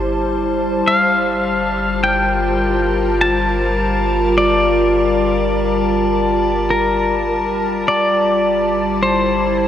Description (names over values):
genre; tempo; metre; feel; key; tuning
ambient; 51 BPM; 3/4; straight; G dorian; A4 = 442 Hz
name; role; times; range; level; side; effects
evolving wavetable pad; sustained chords; 0.0-9.7 s; G3 to A5; -17 LUFS; left 1 dB; chorus, built-in reverb
warm sub bass; bass; 0.0-9.7 s; G1; -25 LUFS; equal; none
pedal steel guitar; melody; 0.9-9.7 s; Bb4 to A5; -18 LUFS; left 1 dB; tape echo
room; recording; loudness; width
wet huge ambient reverb, RT60 8.7 s; none; -14 LUFS; side -10 dB against mid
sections
0.0-9.7 A section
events
fade-out on sub bass 0.0-9.7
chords
0.0 Am7/G; 0.9 Gm9; 7.9 C69/G